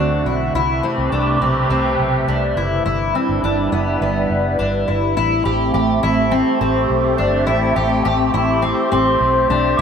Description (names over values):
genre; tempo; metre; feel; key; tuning
dream pop; 104 BPM; 4/4; straight; unclear; A4 = 440 Hz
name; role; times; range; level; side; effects
phased analog pad; sustained chords; 0.0-9.8 s; C3 to B4; -19 LUFS; right 1 dB; phaser, chorus
fingerpicked twelve-string acoustic guitar; arpeggios; 0.0-9.8 s; B3 to G4; -20 LUFS; left 3 dB; lush chorus, analog delay
vintage muted fingered electric bass; bass; 0.0-9.8 s; F#1 to D2; -22 LUFS; right 1 dB; none
glockenspiel with rubber mallets; texture; 3.2-9.8 s; B5 to E6; -25 LUFS; right 1 dB; analog delay
room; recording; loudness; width
wet spring reverb, RT60 1.4 s, small room ambience; echo-heavy mix; -15 LUFS; side -7 dB against mid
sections
0.0-5.2 A section; 5.2-9.8 B section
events
none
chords
0.0 D7; 0.6 Am7; 2.9 G6; 5.2 Am7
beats
| 0.55 1.13 1.71 2.28 | 2.86 3.44 4.01 4.59 | 5.17 5.74 6.32 6.90 | 7.47 8.05 8.63 9.21 | 9.78